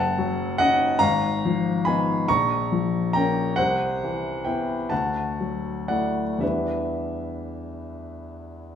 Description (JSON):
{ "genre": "classical, impressionist solo piano", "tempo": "37-49 BPM (dotted quarters)", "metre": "6/8", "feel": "rubato", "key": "unclear", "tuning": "A4 = 441 Hz", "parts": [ { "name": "warm concert grand piano", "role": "solo", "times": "0.0-8.8 s", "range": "F#1 to C#6", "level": "-22 LUFS", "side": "left 1 dB", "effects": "none" } ], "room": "wet recital hall reverb, RT60 1.5 s", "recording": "small room ambience", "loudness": "-21 LUFS", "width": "side -8 dB against mid", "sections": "0.0-8.8 A section", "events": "none", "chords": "0.0 F#m6; 1.0 G#m6; 2.3 A#m6; 3.6 Cmaj7; 4.9 Dadd9; 6.4 Em7" }